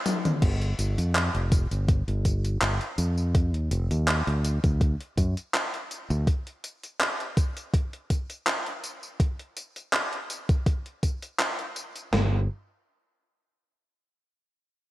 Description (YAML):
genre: vaporwave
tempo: 82 BPM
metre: 4/4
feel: swing 53% on 16ths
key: unclear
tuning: A4 = 440 Hz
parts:
  - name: gated 80s digital drum machine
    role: drums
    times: 0.1-12.1 s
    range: crash cymbal, handclaps, hi-hat, tambourine, toms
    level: -28 LUFS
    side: equal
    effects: gated reverb, overdrive
  - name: fingered electric bass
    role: bass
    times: 0.4-6.2, 12.1-12.5 s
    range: F1 to F#2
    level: -25 LUFS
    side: equal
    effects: none
  - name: gated 80s digital drum machine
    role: drums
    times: 0.4-12.3 s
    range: kick drum, snare drum, toms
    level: -24 LUFS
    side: equal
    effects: gated reverb, gated reverb snare, overdrive
room: light reverb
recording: cassette tape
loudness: -24 LUFS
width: side -16 dB against mid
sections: 0.4-12.1 A section; 12.1-14.9 B section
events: drum fill 0.1-0.4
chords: none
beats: | 0.42 1.15 1.88 2.62 | 3.35 4.08 4.81 5.54 | 6.27 7.01 7.74 8.47 | 9.20 9.93 10.66 11.40 | 12.13